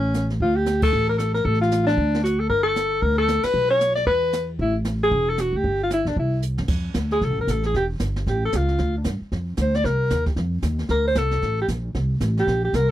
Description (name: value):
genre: jazz, small-group swing and bop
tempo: 229 BPM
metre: 4/4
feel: swing 61% on 8ths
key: F major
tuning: A4 = 440 Hz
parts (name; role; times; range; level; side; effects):
- clear alto saxophone; melody; 0.0-12.9 s; C#4 to D5; -21 LUFS; left 1 dB; none
- upright bass; bass; 0.0-12.9 s; E1 to G2; -23 LUFS; equal; none
- jazz brush drum kit; drums; 0.1-12.9 s; brushed snare drum, crash cymbal, hi-hat, kick drum, ride cymbal, snare drum; -29 LUFS; right 1 dB; none
room: little or no reverb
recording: dry, close 1970s-style studio recording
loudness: -19 LUFS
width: side -13 dB against mid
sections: 0.0-6.7 A section; 6.7-12.9 B section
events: band accent 0.8, 3.4; drum fill 6.4; alto saxophone solo 6.7-12.9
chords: 0.4 D5; 1.5 Dm/A; 2.0 D; 2.5 Gsus2; 3.5 Bsus2; 4.1 E5; 4.6 A5; 5.6 Gm; 6.2 C; 6.7 F; 7.7 Em; 8.3 Aaug; 8.8 Dm; 9.8 Cm7; 10.4 Ebsus2; 10.9 Bbmaj9; 11.9 C5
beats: 0.14 | 0.40 0.67 0.93 1.19 | 1.45 1.71 1.97 2.24 | 2.50 2.76 3.02 3.28 | 3.55 3.81 4.07 4.33 | 4.59 4.86 5.12 5.38 | 5.64 5.90 6.17 6.43 | 6.69 6.95 7.22 7.48 | 7.74 8.00 8.27 8.53 | 8.79 9.05 9.32 9.58 | 9.84 10.11 10.37 10.63 | 10.89 11.16 11.42 11.68 | 11.95 12.21 12.47 12.73